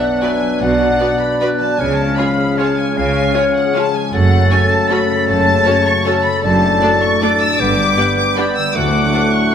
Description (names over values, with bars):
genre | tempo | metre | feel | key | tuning
classical | 155 BPM | 3/4 | uneven beats, rubato | F# minor, D major from 6.4 s | A4 = 440 Hz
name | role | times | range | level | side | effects
warm studio violin section | melody | 0.0-9.5 s | F#5 to E6 | -20 LUFS | left 3 dB | none
hollow concert flute | second line | 0.0-9.5 s | E#6 to A6 | -21 LUFS | equal | none
warm clarinet | second line | 0.0-9.5 s | A4 to F#5 | -22 LUFS | left 1 dB | none
mellow bassoon | accompaniment | 0.0-9.5 s | A3 to D4 | -21 LUFS | left 1 dB | none
clear trombone section | sustained chords | 0.0-9.5 s | G2 to G3 | -24 LUFS | right 2 dB | none
mellow French horn section | sustained chords | 0.0-9.5 s | G#3 to D4 | -22 LUFS | left 2 dB | none
concert harp | arpeggios | 0.0-9.5 s | F#2 to A4 | -25 LUFS | left 6 dB | none
warm symphonic violin section | second line | 0.2-9.2 s | G4 to F#5 | -27 LUFS | left 2 dB | none
clear symphonic viola section | accompaniment | 0.2-9.2 s | A3 to F#4 | -26 LUFS | right 1 dB | none
rich symphonic cello section | bass | 0.6-9.1 s | D2 to C#3 | -22 LUFS | right 2 dB | none
rich symphonic double bass section | bass | 0.6-9.1 s | F#1 to D2 | -22 LUFS | right 3 dB | none
room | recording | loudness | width
wet recital hall reverb, RT60 1.5 s | none | -12 LUFS | side -8 dB against mid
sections
0.0-9.5 A section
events
none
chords
0.0 Bm; 1.8 C#; 4.1 F#m; 6.4 D/F#; 7.6 G; 8.8 D